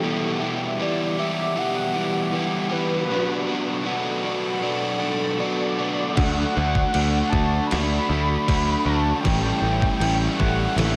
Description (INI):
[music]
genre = rock, shoegaze and dream pop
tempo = 78 BPM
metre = 4/4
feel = straight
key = D major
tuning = A4 = 440 Hz
[part]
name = evolving wavetable pad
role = sustained chords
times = 0.0-11.0 s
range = G4 to D6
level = -34 LUFS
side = equal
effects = phaser, built-in reverb
[part]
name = overdriven semi-hollow guitar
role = riff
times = 0.0-11.0 s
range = E2 to G4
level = -27 LUFS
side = equal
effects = subtle chorus
[part]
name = raw garage guitar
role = riff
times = 0.0-11.0 s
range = A2 to E4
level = -33 LUFS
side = equal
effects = overdrive, reverse reverb
[part]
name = warm velvety synth lead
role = melody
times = 0.8-11.0 s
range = B4 to B5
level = -30 LUFS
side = equal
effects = chorus, diffuse ambient delay
[part]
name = modern bright picked electric bass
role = bass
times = 6.2-11.0 s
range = A1 to D2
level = -26 LUFS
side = equal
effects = none
[part]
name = detuned 8-bit digital drum machine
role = drums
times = 6.2-11.0 s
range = crash cymbal, kick drum, snare drum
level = -29 LUFS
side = equal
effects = none
[sound]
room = moderate lush hall reverb, RT60 1.9 s, digital ambience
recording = dreamy mix soaked in reverb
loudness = -23 LUFS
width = mono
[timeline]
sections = 0.0-11.0 A section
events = none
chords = 0.0 Em9; 3.1 Bm7; 6.2 Dmaj7; 9.3 A7